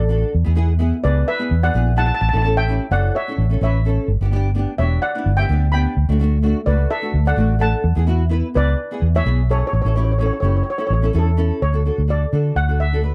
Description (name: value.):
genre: calypso.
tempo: 128 BPM.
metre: 4/4.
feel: straight.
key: D major.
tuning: A4 = 440 Hz.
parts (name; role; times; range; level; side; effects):
steel pan; melody; 0.0-13.1 s; A4 to B5; -26 LUFS; equal; none.
vintage muted fingered electric bass; bass; 0.0-13.1 s; E1 to D3; -19 LUFS; equal; none.
nylon-string guitar; accompaniment; 0.1-13.1 s; A3 to B4; -27 LUFS; equal; double-tracked.
room: little or no reverb.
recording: dry, close 1970s-style studio recording.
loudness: -18 LUFS.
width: mono.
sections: 0.0-11.6 A section; 11.6-13.1 B section.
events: none.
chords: 0.3 E; 2.2 A; 4.1 G; 6.0 D; 7.8 E; 9.7 A; 11.6 Dmaj7.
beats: | 0.33 0.80 1.27 1.74 | 2.21 2.67 3.14 3.61 | 4.08 4.55 5.02 5.49 | 5.96 6.43 6.90 7.37 | 7.84 8.31 8.78 9.25 | 9.72 10.19 10.67 11.14 | 11.61 12.08 12.55 13.03.